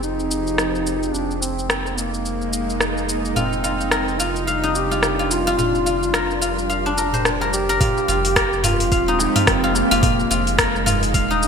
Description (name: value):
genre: organic downtempo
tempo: 108 BPM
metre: 4/4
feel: swing 59% on 16ths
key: F dorian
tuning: A4 = 440 Hz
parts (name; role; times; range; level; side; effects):
- mellow duduk; melody; 0.0-11.5 s; Bb3 to G4; -24 LUFS; equal; ping-pong delay
- bowed-like drone; sustained chords; 0.0-11.5 s; C3 to Bb4; -25 LUFS; right 1 dB; built-in reverb, sidechain pumping
- guzheng; arpeggios; 0.0-11.5 s; D4 to F5; -22 LUFS; left 3 dB; ping-pong delay
- warm sub bass; bass; 0.0-11.5 s; Eb1 to F1; -27 LUFS; right 1 dB; sidechain pumping
- afro-pop drum kit; drums; 0.0-11.5 s; hi-hat, rim click, shaker, toms; -22 LUFS; equal; gated reverb
- darbuka; percussion; 3.4-11.4 s; none; -29 LUFS; left 1 dB; none
- electronic kick drum; drums; 7.8-11.3 s; none; -23 LUFS; right 1 dB; none
room: moderate lush hall reverb, RT60 2.4 s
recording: bright 1980s-style digital production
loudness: -17 LUFS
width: side -6 dB against mid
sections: 0.0-7.8 A section; 7.8-11.5 B section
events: none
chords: 0.0 Fm9; 1.1 Bb9sus4/F; 3.4 Cm7/F; 7.8 Fm9; 10.0 Bb7sus4/F